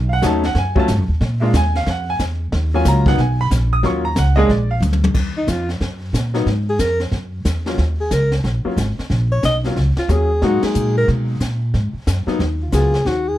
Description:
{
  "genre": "jazz, small-group swing and bop",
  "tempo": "182 BPM",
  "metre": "4/4",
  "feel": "swing 64% on 8ths",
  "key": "Eb minor",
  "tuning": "A4 = 440 Hz",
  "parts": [
    { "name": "upright bass", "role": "bass", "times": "0.0-13.4 s", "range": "Ab1 to Cb3", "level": "-18 LUFS", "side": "equal", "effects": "none" },
    { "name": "bright upright piano", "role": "accompaniment", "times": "0.1-12.9 s", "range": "F#3 to Eb6", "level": "-20 LUFS", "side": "left 1 dB", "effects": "none" },
    { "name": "jazz brush drum kit", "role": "drums", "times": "0.2-13.4 s", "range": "brushed snare drum, crash cymbal, hi-hat, kick drum, ride cymbal, snare drum, toms", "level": "-23 LUFS", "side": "equal", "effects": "none" },
    { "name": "clear alto saxophone", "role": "melody", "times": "5.4-13.4 s", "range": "Eb4 to Eb5", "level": "-19 LUFS", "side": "equal", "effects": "none" }
  ],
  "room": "light reverb",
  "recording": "dark, warm production",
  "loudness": "-15 LUFS",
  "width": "side -14 dB against mid",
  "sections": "0.0-5.2 A section; 5.2-13.4 B section",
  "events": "drum fill 4.8-5.2; band accent 10.6",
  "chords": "0.0 B7; 1.2 Bb7(no3); 2.5 Ebm9; 3.2 Abmadd9; 3.8 Ebm9; 4.5 Bb; 5.2 Ebmadd9; 6.5 N.C.; 7.8 Ebm7; 10.4 Abm9"
}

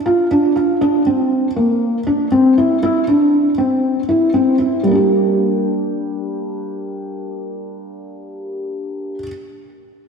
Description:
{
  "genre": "electronica",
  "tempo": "119 BPM",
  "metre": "4/4",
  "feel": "straight",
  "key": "G dorian",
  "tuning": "A4 = 439 Hz",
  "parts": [
    { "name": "felt-muted upright piano", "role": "solo", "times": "0.1-9.3 s", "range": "G3 to G4", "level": "-15 LUFS", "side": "equal", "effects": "lush chorus, analog delay" }
  ],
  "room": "wet lush hall reverb, RT60 2.7 s",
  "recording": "dreamy mix soaked in reverb",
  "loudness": "-14 LUFS",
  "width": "side -6 dB against mid",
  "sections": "0.0-4.8 A section; 4.8-8.9 B section",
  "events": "none",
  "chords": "0.0 Dm; 0.8 C7; 2.8 Cadd9; 4.8 Gm"
}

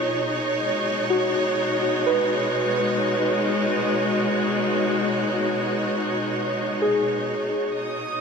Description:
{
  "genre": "ambient",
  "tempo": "63 BPM",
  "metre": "4/4",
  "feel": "straight",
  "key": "unclear",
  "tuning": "A4 = 439 Hz",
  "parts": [
    { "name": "rich chamber string section", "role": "sustained chords", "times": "0.0-8.2 s", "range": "B2 to C#5", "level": "-22 LUFS", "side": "equal", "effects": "none" },
    { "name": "muted felt-like synth keys", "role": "arpeggios", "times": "0.0-7.8 s", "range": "E#4 to B4", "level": "-26 LUFS", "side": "equal", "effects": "chorus, ping-pong delay" },
    { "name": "rich studio violin section", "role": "texture", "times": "7.7-8.2 s", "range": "D#6", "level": "-30 LUFS", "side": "right 4 dB", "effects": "none" }
  ],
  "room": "wet huge ambient reverb, RT60 7.6 s",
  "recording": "none",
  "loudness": "-21 LUFS",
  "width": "side -5 dB against mid",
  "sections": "0.0-7.8 A section",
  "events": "none",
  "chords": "0.1 C#7sus4/B"
}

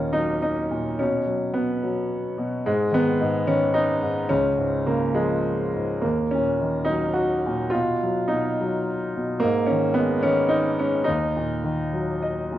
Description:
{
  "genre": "classical, lyrical solo piano",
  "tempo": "107 BPM",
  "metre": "3/4",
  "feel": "rubato",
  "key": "Eb minor",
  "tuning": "A4 = 440 Hz",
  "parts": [
    { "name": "clear concert grand piano", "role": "solo", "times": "0.0-12.6 s", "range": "Db2 to Eb5", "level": "-21 LUFS", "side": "equal", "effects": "none" }
  ],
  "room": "moderate recital hall reverb, RT60 1.5 s",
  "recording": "worn, warbling old tape, cassette tape, warbly pitch drift",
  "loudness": "-21 LUFS",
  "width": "side -13 dB against mid",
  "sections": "0.0-12.6 A section",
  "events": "grand piano fill 11.9-12.6",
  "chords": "0.0 Ebm; 1.0 Bsus2; 2.7 Abm; 4.3 Db; 6.0 Ebm; 7.7 B; 9.4 Ab5; 11.1 Ebm"
}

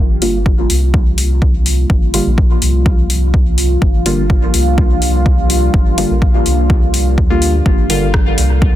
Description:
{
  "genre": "dub techno",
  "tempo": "125 BPM",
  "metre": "4/4",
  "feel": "straight",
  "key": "G minor",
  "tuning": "A4 = 440 Hz",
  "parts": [
    { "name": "deep dark ambient pad", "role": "sustained chords", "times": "0.0-8.8 s", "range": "G3 to A4", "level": "-20 LUFS", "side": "equal", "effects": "chorus, built-in reverb, sidechain pumping" },
    { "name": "soft dub sub bass", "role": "bass", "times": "0.0-8.8 s", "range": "G1 to D2", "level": "-15 LUFS", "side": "equal", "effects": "sidechain pumping" },
    { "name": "deep mellow chord stab", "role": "stabs", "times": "0.2-8.1 s", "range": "D3 to F4", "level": "-20 LUFS", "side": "equal", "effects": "chorus, phaser, sidechain pumping, dub echo" },
    { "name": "deep house drum kit", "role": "drums", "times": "0.2-8.5 s", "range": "hi-hat, rim click", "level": "-20 LUFS", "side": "left 3 dB", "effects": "overdrive" },
    { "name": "electronic kick drum", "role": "drums", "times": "0.5-8.7 s", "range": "none", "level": "-13 LUFS", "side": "equal", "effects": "overdrive" }
  ],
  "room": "digital ambience",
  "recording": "dense, heavily limited modern master",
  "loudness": "-10 LUFS",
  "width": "side -13 dB against mid",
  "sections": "0.0-8.8 A section",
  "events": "none",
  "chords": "0.0 Gm7"
}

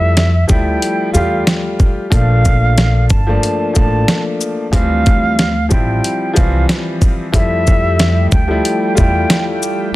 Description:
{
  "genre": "hip hop, boom-bap hip-hop",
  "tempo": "92 BPM",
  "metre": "4/4",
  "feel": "swing 55% on 16ths",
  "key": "F major",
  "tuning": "A4 = 439 Hz",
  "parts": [
    { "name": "silver concert flute", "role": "melody", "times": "0.0-9.4 s", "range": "E5 to A5", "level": "-20 LUFS", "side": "right 2 dB", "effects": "high-pass filter, low-pass filter, tape echo" },
    { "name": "warm upright piano", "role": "accompaniment", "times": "0.0-9.9 s", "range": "E3 to G4", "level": "-19 LUFS", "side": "left 2 dB", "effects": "high-pass filter, low-pass filter" },
    { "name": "upright bass", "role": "bass", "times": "0.0-9.2 s", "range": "G1 to F2", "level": "-15 LUFS", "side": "equal", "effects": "none" },
    { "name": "dusty soul sampler-style drum kit", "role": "drums", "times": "0.2-9.8 s", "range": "hi-hat, kick drum, shaker, snare drum", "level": "-14 LUFS", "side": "equal", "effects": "none" },
    { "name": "warm analog pad", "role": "sustained chords", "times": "7.3-10.0 s", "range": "G3 to G5", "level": "-24 LUFS", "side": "right 1 dB", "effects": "chorus, high-pass filter, low-pass filter" }
  ],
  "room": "studio reverb",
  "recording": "dense, heavily limited modern master",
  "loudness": "-11 LUFS",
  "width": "side -17 dB against mid",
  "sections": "0.0-10.0 A section",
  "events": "none",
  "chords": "0.0 Fmaj9; 2.1 Bbmaj7; 4.7 Dm11; 7.3 Fmaj9"
}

